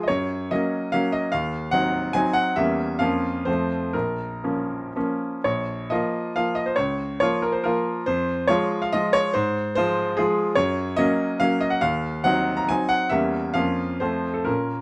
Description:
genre	classical, romantic triple-time dance for piano with dotted rhythms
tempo	113-154 BPM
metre	3/4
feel	rubato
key	Bb minor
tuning	A4 = 441 Hz
part	bright grand piano	solo	0.0-14.8 s	Bb1 to Bb5	-24 LUFS	equal	none
room	light reverb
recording	none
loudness	-24 LUFS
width	mono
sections	0.0-5.4 A section; 5.4-14.8 A section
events	none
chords	0.1 Gb; 1.3 Cdim/Eb; 2.6 Edim7; 3.0 Bbm/F; 3.5 F; 3.9 Bbm; 6.8 Bbm/Db; 8.1 Fm; 9.3 Fm/Ab; 10.6 Gb; 11.8 Cdim/Eb; 13.1 Edim7; 13.6 Bbm/F; 14.0 F

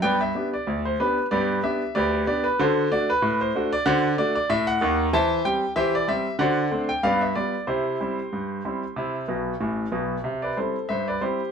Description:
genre	ragtime piano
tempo	94 BPM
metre	2/4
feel	swing 55% on 16ths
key	C major from 5.1 s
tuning	A4 = 441 Hz
part	bright concert grand piano	solo	0.0-11.5 s	A1 to A5	-22 LUFS	equal	none
room	moderate small room reverb, RT60 0.5 s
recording	band playing live in one room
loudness	-22 LUFS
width	side -6 dB against mid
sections	0.0-10.3 A section; 10.3-11.5 B section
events	grand piano fill 9.3-10.3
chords	0.0 G; 2.6 D7; 5.1 C/E; 6.4 D7; 7.0 G7; 7.7 C

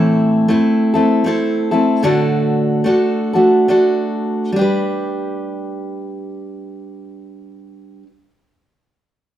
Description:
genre	folk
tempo	66-80 BPM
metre	3/4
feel	swing 59% on 8ths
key	G major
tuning	A4 = 439 Hz
part	picked steel-string acoustic guitar	accompaniment	0.0-8.1 s	A2 to B4	-14 LUFS	equal	none
room	wet stone room reverb, RT60 1.1 s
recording	band playing live in one room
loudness	-13 LUFS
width	side -11 dB against mid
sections	0.0-4.5 A section; 4.5-7.3 B section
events	slowing down 0.0-4.5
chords	0.0 Am; 2.0 D/A; 4.5 G

